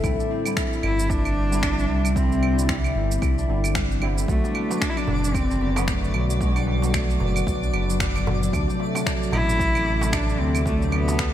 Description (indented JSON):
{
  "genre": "organic downtempo",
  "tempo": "113 BPM",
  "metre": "4/4",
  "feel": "swing 58% on 16ths",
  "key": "unclear",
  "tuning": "A4 = 440 Hz",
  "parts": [
    { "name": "tine electric piano", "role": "accompaniment", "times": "0.0-11.3 s", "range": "C3 to B4", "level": "-31 LUFS", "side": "right 2 dB", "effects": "ensemble chorus, sidechain pumping" },
    { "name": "ethereal airy pad", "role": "sustained chords", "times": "0.0-11.3 s", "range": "C3 to D5", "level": "-35 LUFS", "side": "left 1 dB", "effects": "ensemble chorus, built-in reverb, sidechain pumping" },
    { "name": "concert harp", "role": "arpeggios", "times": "0.0-11.3 s", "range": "F#3 to A4", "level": "-29 LUFS", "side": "left 4 dB", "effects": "ping-pong delay" },
    { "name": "smooth gliding synth bass", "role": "bass", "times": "0.0-11.3 s", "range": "F#1 to D2", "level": "-24 LUFS", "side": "equal", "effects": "sidechain pumping" },
    { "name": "electronic claves, shaker and finger snaps", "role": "drums", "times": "0.0-11.3 s", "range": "none", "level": "-30 LUFS", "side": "right 2 dB", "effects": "overdrive" },
    { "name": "electronic kick drum", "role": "drums", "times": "0.0-11.3 s", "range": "none", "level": "-27 LUFS", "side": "equal", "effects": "overdrive" },
    { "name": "rich cello", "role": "melody", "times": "0.8-11.3 s", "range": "G3 to E4", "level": "-27 LUFS", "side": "equal", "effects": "ping-pong delay" },
    { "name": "twinkling granular texture", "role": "texture", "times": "4.6-11.3 s", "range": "D5", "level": "-35 LUFS", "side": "equal", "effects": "built-in reverb" },
    { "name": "darbuka", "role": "percussion", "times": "4.4-11.2 s", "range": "none", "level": "-34 LUFS", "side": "right 3 dB", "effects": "none" }
  ],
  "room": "light reverb, digital ambience",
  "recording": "bright 1980s-style digital production",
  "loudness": "-20 LUFS",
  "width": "side -11 dB against mid",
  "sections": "0.0-11.3 A section",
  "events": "none",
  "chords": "0.0 Cadd9; 4.3 Bm; 8.5 D7"
}